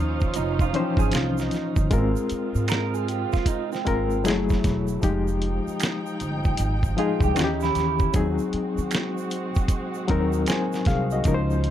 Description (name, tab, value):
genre	R&B, neo-soul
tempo	77 BPM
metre	4/4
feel	swing 64% on 16ths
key	Ab major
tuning	A4 = 440 Hz
part	barky reed electric piano	accompaniment	0.0-11.7 s	Eb3 to Ab5	-26 LUFS	left 3 dB	overdrive, fast tremolo, plate reverb
part	dark studio string section	sustained chords	0.0-11.7 s	Db3 to G5	-32 LUFS	right 3 dB	plate reverb
part	upright bass	bass	0.0-11.7 s	Fb1 to Eb3	-26 LUFS	right 1 dB	none
part	dusty soul sampler-style drum kit	drums	0.2-11.7 s	hi-hat, kick drum, snare drum	-24 LUFS	right 1 dB	none
part	egg shaker and finger snaps	percussion	0.2-11.6 s	none	-38 LUFS	right 10 dB	none
part	electric guitar through a small old amp	second line	0.4-8.1 s	C4 to Bb4	-29 LUFS	right 12 dB	plate reverb
room	light reverb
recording	dark, warm production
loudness	-21 LUFS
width	side -11 dB against mid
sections	0.0-11.7 A section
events	none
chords	0.0 Dbmaj9; 1.9 Ab69; 4.2 Gbm9; 5.0 Fm9; 7.4 Eb7b9; 8.1 Ab7/Eb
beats	0.35 1.13 | 1.91 2.69 3.46 4.24 | 5.02 5.80 6.58 7.36 | 8.14 8.92 9.70 10.48 | 11.26